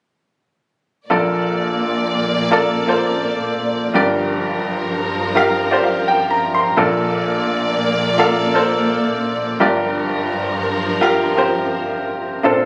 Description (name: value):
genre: pop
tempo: 85 BPM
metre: 4/4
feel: straight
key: Bb major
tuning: A4 = 440 Hz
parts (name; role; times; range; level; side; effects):
- clear baby grand piano; accompaniment; 1.1-12.7 s; G1 to C6; -19 LUFS; equal; none
- warm studio string section; sustained chords; 1.1-12.4 s; G2 to D5; -24 LUFS; equal; none
- soft octave-layered synth lead; melody; 12.5-12.6 s; C5; -18 LUFS; equal; chorus, tremolo
room: moderate studio reverb, RT60 0.6 s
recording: recorded on a phone in the room, studio reverb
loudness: -18 LUFS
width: mono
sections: 1.1-12.4 A section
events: grand piano fill 5.4-6.8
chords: 1.1 Bbmaj7; 3.9 Gm7; 6.8 Bbmaj7; 9.6 Gm7